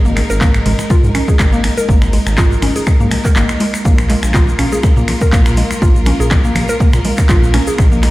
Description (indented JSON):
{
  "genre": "afro house",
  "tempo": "122 BPM",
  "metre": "4/4",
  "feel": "swing 54% on 16ths",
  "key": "unclear",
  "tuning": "A4 = 439 Hz",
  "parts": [
    { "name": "rich symphonic string section", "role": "sustained chords", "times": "0.0-8.1 s", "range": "Ab3 to Bb4", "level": "-23 LUFS", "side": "left 1 dB", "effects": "sidechain pumping" },
    { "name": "dark detuned saw bass", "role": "bass", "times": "0.0-8.1 s", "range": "Ab1 to Bb2", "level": "-16 LUFS", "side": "equal", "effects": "sidechain pumping" },
    { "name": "mallet-like synth pluck", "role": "arpeggios", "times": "0.1-8.0 s", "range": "Ab3 to Bb4", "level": "-19 LUFS", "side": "equal", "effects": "chorus, sidechain pumping, tape echo" },
    { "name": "tube shaker", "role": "percussion", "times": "0.1-8.0 s", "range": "none", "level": "-30 LUFS", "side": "left 2 dB", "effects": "none" },
    { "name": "afro-pop drum kit", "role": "drums", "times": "0.2-8.1 s", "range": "finger snaps, handclaps, hi-hat", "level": "-21 LUFS", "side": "equal", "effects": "overdrive" },
    { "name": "congas", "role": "percussion", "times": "0.2-8.1 s", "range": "none", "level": "-23 LUFS", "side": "left 2 dB", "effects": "none" },
    { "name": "electronic kick drum", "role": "drums", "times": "0.4-7.9 s", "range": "none", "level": "-12 LUFS", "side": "equal", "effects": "overdrive" }
  ],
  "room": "light reverb, small room ambience",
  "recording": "played on a big sound system in a bare room, stone room reverb",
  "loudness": "-10 LUFS",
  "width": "side -18 dB against mid",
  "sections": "0.0-8.1 A section",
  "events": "break 3.4-3.9",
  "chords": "0.0 Ab5; 3.9 Bb5",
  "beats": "0.41 0.90 1.39 | 1.89 2.38 2.87 3.36 | 3.85 4.34 4.84 5.33 | 5.82 6.31 6.80 7.29 | 7.79"
}